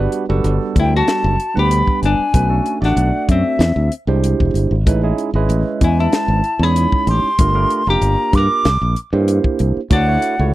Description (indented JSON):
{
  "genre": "electric jazz fusion",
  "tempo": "95 BPM",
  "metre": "4/4",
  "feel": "straight",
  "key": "unclear",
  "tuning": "A4 = 444 Hz",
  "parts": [
    { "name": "barky tine electric piano", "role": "accompaniment", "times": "0.0-10.5 s", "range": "D3 to F#5", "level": "-21 LUFS", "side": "right 5 dB", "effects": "phaser" },
    { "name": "modern bright fingered electric bass", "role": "bass", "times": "0.0-10.5 s", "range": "E1 to G2", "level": "-16 LUFS", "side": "equal", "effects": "none" },
    { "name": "tight funk drum kit", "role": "drums", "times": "0.1-10.4 s", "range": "hi-hat, kick drum, snare drum", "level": "-17 LUFS", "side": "equal", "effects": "none" },
    { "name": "mellow silver concert flute", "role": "melody", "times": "0.8-10.5 s", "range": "Fb5 to D6", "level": "-19 LUFS", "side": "equal", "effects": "none" },
    { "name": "archtop guitar, miked and amplified", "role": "second line", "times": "0.8-10.5 s", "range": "C4 to Bb4", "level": "-23 LUFS", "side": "left 5 dB", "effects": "none" }
  ],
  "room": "little or no reverb",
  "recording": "dry, close 1970s-style studio recording",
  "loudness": "-14 LUFS",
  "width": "side -16 dB against mid",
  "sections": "0.0-10.5 A section",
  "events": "none",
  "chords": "0.0 Gmaj9; 2.3 Cbm7; 3.6 E7alt; 4.9 Amaj9#11; 7.4 Gm7; 8.7 C9; 9.9 Dmaj7"
}